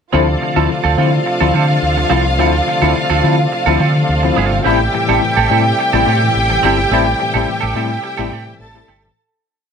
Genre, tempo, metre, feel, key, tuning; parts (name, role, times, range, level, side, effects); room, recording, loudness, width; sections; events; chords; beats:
disco; 106 BPM; 4/4; straight; D minor; A4 = 444 Hz
warm symphonic violin section; second line; 0.1-9.2 s; F4 to A5; -18 LUFS; right 1 dB
overdriven tine electric piano; accompaniment; 0.1-9.2 s; A2 to E4; -19 LUFS; left 14 dB; fast tremolo
semi-hollow electric guitar; accompaniment; 0.1-9.1 s; C4 to A4; -19 LUFS; right 13 dB; lush chorus
bright tonewheel organ; sustained chords; 0.1-9.1 s; C3 to E4; -22 LUFS; right 1 dB; overdrive, chorus vibrato, slow rotary speaker
fingered electric bass; bass; 0.1-9.1 s; G1 to D3; -16 LUFS; right 1 dB
moderate spring reverb, RT60 2.1 s; 1960s-style stereo with parts hard left and right; -12 LUFS; side -6 dB against mid
0.1-9.2 groove
fade-out 6.9-9.2
0.1 Dm7; 4.7 Am7
| 0.13 0.70 1.26 1.83 | 2.39 2.96 3.52 4.09 | 4.65 5.22 5.78 6.35 | 6.91 7.47 8.04 8.60